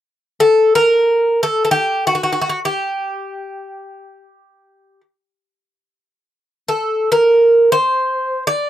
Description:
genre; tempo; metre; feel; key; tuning
greek folk; free time; none; none; G harmonic minor; A4 = 438 Hz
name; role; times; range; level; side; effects
Greek bouzouki; melody; 0.4-8.7 s; F#4 to D5; -14 LUFS; equal; none
room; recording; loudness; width
moderate small room reverb, RT60 0.6 s; dry, close 1970s-style studio recording; -13 LUFS; side -12 dB against mid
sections
0.0-8.7 A section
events
none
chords
none

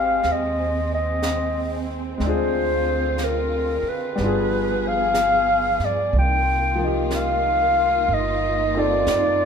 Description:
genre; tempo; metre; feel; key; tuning
jazz ballad; 61 BPM; 4/4; swing 66% on 8ths; unclear; A4 = 441 Hz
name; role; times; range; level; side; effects
mellow clarinet; melody; 0.0-9.5 s; Bb4 to G5; -21 LUFS; left 1 dB; none
clear baby grand piano; accompaniment; 0.0-9.5 s; F3 to Bb4; -27 LUFS; left 4 dB; none
warm symphonic string section; sustained chords; 0.0-9.5 s; D3 to Ab4; -29 LUFS; right 3 dB; none
upright bass; bass; 0.0-9.5 s; G1 to G2; -26 LUFS; right 1 dB; none
jazz brush drum kit; drums; 0.2-9.5 s; brushed snare drum, hi-hat, snare drum; -34 LUFS; right 1 dB; none
room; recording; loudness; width
moderate large studio reverb, RT60 1.3 s; minimal, uncompressed stereo recording; -19 LUFS; side -6 dB against mid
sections
0.0-9.5 A section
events
none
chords
0.0 Abmaj7; 2.2 Dm7b5; 4.2 G7b9; 6.1 Cm11

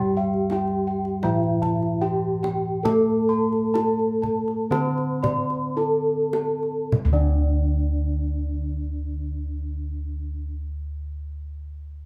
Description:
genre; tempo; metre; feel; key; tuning
Javanese gamelan; 50-89 BPM; 4/4; straight; D slendro; A4 = 440 Hz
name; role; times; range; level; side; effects
gamelan-type bronze metallophone; melody; 0.0-10.5 s; D4 to C5-40c; -29 LUFS; equal; none
gamelan-type bronze metallophone; accompaniment; 0.0-10.5 s; D3 to C4-40c; -30 LUFS; equal; none
gamelan-type bossed gongs; arpeggios; 0.0-10.5 s; D5 to C6-40c; -35 LUFS; equal; none
gamelan-type bronze metallophone; arpeggios; 0.0-10.5 s; D5 to C6-40c; -35 LUFS; equal; none
gamelan-type bossed gongs; bass; 0.0-10.4 s; D2 to A4+20c; -29 LUFS; equal; none
kendang; percussion; 0.3-7.5 s; none; -32 LUFS; equal; none
room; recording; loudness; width
light reverb; band playing live in one room; -24 LUFS; mono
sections
0.0-6.9 A section; 6.9-11.8 B section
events
slowing down 0.0-6.9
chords
none

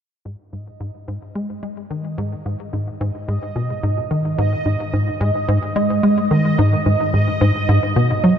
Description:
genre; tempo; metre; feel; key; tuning
ambient, sequencer-driven space music; 109 BPM; 4/4; straight; G# minor; A4 = 441 Hz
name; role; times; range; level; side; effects
tight sequencer bass; riff; 0.3-8.3 s; G#2 to G#3; -18 LUFS; equal; analog chorus, ping-pong delay
bubbling stepped-filter texture; texture; 2.2-8.4 s; D#5; -25 LUFS; right 4 dB; chorus, built-in reverb
room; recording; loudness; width
wet huge ambient reverb, RT60 7.0 s; none; -17 LUFS; side -8 dB against mid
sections
0.3-8.4 A section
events
fade-in on analog synth bass 0.3-8.4; fade-in on synth texture 0.3-8.4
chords
0.3 G#5

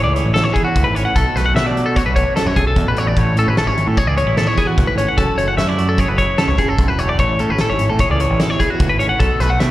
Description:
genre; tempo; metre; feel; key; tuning
math rock and midwest emo; 149 BPM; 5/4; straight; A major; A4 = 440 Hz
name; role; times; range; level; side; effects
twangy electric guitar; accompaniment; 0.0-9.7 s; E2 to B4; -23 LUFS; right 6 dB; tremolo, slapback echo
twelve-string electric guitar; arpeggios; 0.0-9.7 s; F#4 to F#5; -18 LUFS; left 3 dB; slapback echo
growling picked electric bass; bass; 0.1-9.7 s; E1 to B2; -18 LUFS; equal; overdrive
loose indie drum kit; drums; 0.2-9.7 s; hi-hat, kick drum, snare drum; -20 LUFS; equal; none
room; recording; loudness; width
studio reverb; live gig heard through the venue's PA, recital hall reverb; -14 LUFS; side -15 dB against mid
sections
0.0-9.7 A section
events
none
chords
0.0 Amaj7; 1.2 Bm7; 3.2 Amaj7; 5.2 F#m7; 7.2 Amaj7; 9.2 Bm7

